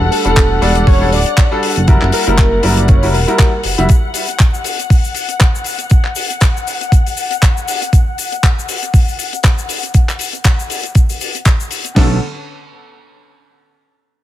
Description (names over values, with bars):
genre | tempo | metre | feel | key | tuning
nu-disco, nu disco | 119 BPM | 4/4 | swing 56% on 16ths | B minor | A4 = 439 Hz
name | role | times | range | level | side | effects
bright concert grand piano | accompaniment | 0.0-3.9, 11.9-12.2 s | D3 to E5 | -18 LUFS | left 1 dB | digital delay
warm studio string section | sustained chords | 0.0-12.0 s | F#5 | -24 LUFS | left 5 dB | vintage 12-bit sampler grit, sidechain pumping, low-pass filter
chorused synth bass | bass | 0.0-3.9, 12.0-12.2 s | D1 to B1 | -15 LUFS | equal | none
wide unison lead | melody | 0.1-3.6 s | A4 to D5 | -19 LUFS | right 1 dB | digital delay
damped 70s drum kit | drums | 0.1-11.9 s | handclaps, hi-hat, shaker | -19 LUFS | left 3 dB | none
clean 12-bit digital drum machine | drums | 0.4-12.1 s | crash cymbal, kick drum, snare drum | -10 LUFS | equal | none
room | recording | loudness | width
little or no reverb | none | -11 LUFS | side -13 dB against mid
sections
0.0-12.0 A section; 12.0-14.0 B section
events
filter sweep on string section 0.0-12.0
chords
0.0 Em11; 1.9 F#7b9; 3.9 N.C.; 12.0 Bm9